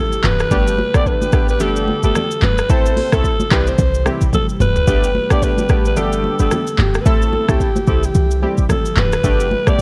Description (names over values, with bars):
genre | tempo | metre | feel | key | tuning
afrobeats | 110 BPM | 4/4 | swing 58% on 16ths | G major | A4 = 440 Hz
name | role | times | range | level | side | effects
breathy alto saxophone | melody | 0.0-9.8 s | G4 to D5 | -22 LUFS | equal | delay
ethereal airy pad | sustained chords | 0.0-9.8 s | C3 to A4 | -30 LUFS | equal | ensemble chorus, built-in reverb
afro-pop drum kit | drums | 0.1-9.8 s | handclaps, hi-hat, kick drum, rim click, shaker, toms | -21 LUFS | equal | none
clean 808-style bass | bass | 0.2-9.8 s | D1 to C2 | -20 LUFS | equal | none
congas | percussion | 0.2-9.7 s | none | -27 LUFS | equal | none
warm analog keys | accompaniment | 0.5-9.8 s | G3 to A4 | -25 LUFS | equal | chorus
room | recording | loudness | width
little or no reverb | worn, warbling old tape, cassette tape, warbly pitch drift | -16 LUFS | mono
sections
0.0-9.8 A section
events
drum fill 4.3-4.9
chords
0.0 C; 0.5 Gadd9; 2.7 Am; 3.5 C; 4.9 Gadd9; 7.1 Am; 7.9 C; 9.2 Gadd9